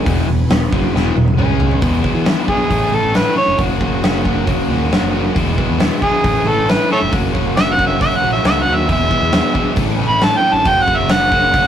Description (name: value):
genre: classic rock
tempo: 136 BPM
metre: 4/4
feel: straight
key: unclear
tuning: A4 = 436 Hz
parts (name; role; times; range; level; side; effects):
- string machine, full ensemble; sustained chords; 0.0-11.7 s; G#3 to G#5; -30 LUFS; equal; none
- crunchy overdriven guitar; riff; 0.0-11.7 s; E2 to F#4; -23 LUFS; right 4 dB; spring reverb
- distorted electric guitar; riff; 0.0-11.7 s; E2 to F#4; -21 LUFS; left 5 dB; distortion
- modern bright fingered electric bass; bass; 0.0-11.6 s; E1 to E3; -21 LUFS; equal; none
- big rock drum kit; drums; 0.1-11.6 s; hi-hat, kick drum, snare drum, toms; -18 LUFS; equal; none
- overdriven harmonica; melody; 2.5-11.7 s; G#4 to B5; -15 LUFS; right 1 dB; none
room: moderate small room reverb, RT60 0.5 s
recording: rough rehearsal-room recording, warm saturation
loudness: -13 LUFS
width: side -9 dB against mid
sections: 0.0-1.8 A section; 1.8-11.7 B section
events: drum fill 0.9-1.8; harmonica solo 1.8-11.7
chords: 0.1 E; 1.4 C#5; 1.8 E; 2.7 A; 3.6 F#; 5.4 E; 6.2 A; 7.1 F#; 8.9 E; 9.8 A; 10.7 F#